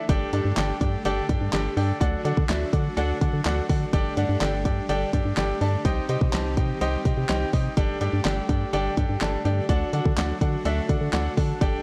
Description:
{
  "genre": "dance-pop",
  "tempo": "125 BPM",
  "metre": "4/4",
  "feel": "straight",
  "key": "unclear",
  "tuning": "A4 = 440 Hz",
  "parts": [
    { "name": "bright concert grand piano", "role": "accompaniment", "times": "0.0-11.8 s", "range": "D4 to A5", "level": "-30 LUFS", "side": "equal", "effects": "sidechain pumping" },
    { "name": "supersaw chords", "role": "sustained chords", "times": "0.0-11.8 s", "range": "D3 to G4", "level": "-37 LUFS", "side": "equal", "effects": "sidechain pumping" },
    { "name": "organ-like FM bass", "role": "bass", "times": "0.1-11.8 s", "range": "G1 to D3", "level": "-28 LUFS", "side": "equal", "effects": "sidechain pumping" },
    { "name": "pop drum kit", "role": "drums", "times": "0.1-11.7 s", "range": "handclaps, hi-hat, kick drum, snare drum", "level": "-28 LUFS", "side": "equal", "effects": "none" }
  ],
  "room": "light reverb",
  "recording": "worn, warbling old tape, cassette tape, warbly pitch drift",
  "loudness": "-24 LUFS",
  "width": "mono",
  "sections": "0.1-11.8 A section",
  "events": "drop 0.1-11.8",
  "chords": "0.1 Gsus2; 2.0 D; 3.9 Gsus2; 5.9 Cm; 7.8 Gsus2; 9.7 D"
}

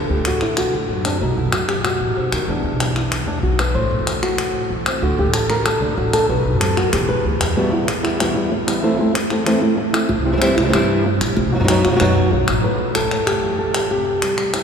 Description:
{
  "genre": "flamenco",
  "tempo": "189 BPM",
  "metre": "4/4",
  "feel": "straight",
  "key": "E minor",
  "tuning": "A4 = 443 Hz",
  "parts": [
    { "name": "flamenco guitar", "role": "melody", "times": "0.0-14.6 s", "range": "E2 to C5", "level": "-18 LUFS", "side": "equal", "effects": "none" },
    { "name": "upright bass", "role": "bass", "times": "0.0-7.5, 10.1-12.6 s", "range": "A1 to G2", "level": "-22 LUFS", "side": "equal", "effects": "none" },
    { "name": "palmas hand claps", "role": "percussion", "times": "0.2-14.6 s", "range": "none", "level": "-23 LUFS", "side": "left 2 dB", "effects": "none" }
  ],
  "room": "wet cathedral reverb, RT60 5.5 s",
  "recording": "recorded in a church or concert hall",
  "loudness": "-16 LUFS",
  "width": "side -6 dB against mid",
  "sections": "0.0-7.6 A section; 7.6-12.6 B section; 12.6-14.6 C section",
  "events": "nylon-string guitar solo 0.0-7.6",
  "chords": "0.0 D; 1.2 B; 2.5 E5; 3.8 Am; 5.0 D5; 6.3 B; 6.9 G6; 7.6 Em; 8.8 Am; 10.1 C; 11.4 B; 12.6 A5; 13.9 C5"
}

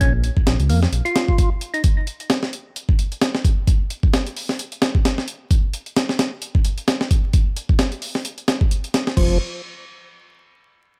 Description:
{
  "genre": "breakbeat, breaks",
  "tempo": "131 BPM",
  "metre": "4/4",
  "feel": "swing 56% on 16ths",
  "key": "unclear",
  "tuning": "A4 = 440 Hz",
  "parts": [
    { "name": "percussive tonewheel organ", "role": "riff", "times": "0.0-1.8, 9.2-9.4 s", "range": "F3 to F4", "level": "-27 LUFS", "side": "equal", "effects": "chorus vibrato, slow rotary speaker, tube saturation, delay" },
    { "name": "dark detuned saw bass", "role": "bass", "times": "0.0-1.0, 9.2-9.4 s", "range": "F1 to F2", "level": "-21 LUFS", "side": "equal", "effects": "none" },
    { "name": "breakbeat sampler-style drum kit", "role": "drums", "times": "0.0-9.3 s", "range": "crash cymbal, hi-hat, kick drum, snare drum", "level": "-20 LUFS", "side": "equal", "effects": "none" }
  ],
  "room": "digital ambience",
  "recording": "vinyl crackle",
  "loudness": "-20 LUFS",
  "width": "mono",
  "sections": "0.0-9.2 A section; 9.2-11.0 B section",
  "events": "none",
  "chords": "0.0 Bbm; 1.8 N.C."
}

